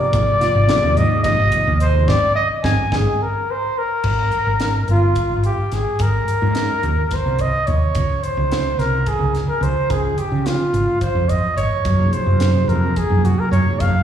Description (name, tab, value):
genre	electric jazz fusion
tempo	215 BPM (eighths)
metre	7/8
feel	straight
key	Ab lydian, Ab major from 4.0 s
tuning	A4 = 440 Hz
part	breathy trumpet	melody	0.0-14.0 s	F4 to Ab5	-19 LUFS	equal	slapback echo, plate reverb
part	tine electric piano	accompaniment	0.0-3.0, 12.0-14.0 s	C3 to Ab4	-24 LUFS	equal	medium tremolo, wide subtle chorus, plate reverb
part	mellow fretless electric bass	bass	0.1-14.0 s	G1 to Db3	-18 LUFS	equal	lush chorus
part	crisp fusion drum kit	drums	0.1-13.9 s	crash cymbal, hi-hat, kick drum, snare drum	-25 LUFS	equal	none
room	light reverb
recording	live gig heard through the venue's PA, recital hall reverb, small room ambience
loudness	-16 LUFS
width	side -9 dB against mid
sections	0.0-4.0 A section; 4.0-14.0 B section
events	band accent 2.1-4.0; drum fill 3.2-4.0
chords	0.0 Abmaj7; 4.0 Absus2; 8.0 Dbmaj7(no3); 11.9 Gbmaj9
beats	| 0.13 0.41 0.69 0.97 1.25 1.53 1.81 | 2.08 2.37 2.64 2.92 3.20 3.48 3.76 | 4.04 4.32 4.60 4.88 5.16 5.44 5.72 | 6.00 6.28 6.55 6.83 7.11 7.39 7.67 | 7.95 8.23 8.51 8.79 9.07 9.35 9.62 | 9.90 10.18 10.46 10.74 11.02 11.29 11.57 | 11.85 12.13 12.41 12.69 12.97 13.24 13.52 | 13.80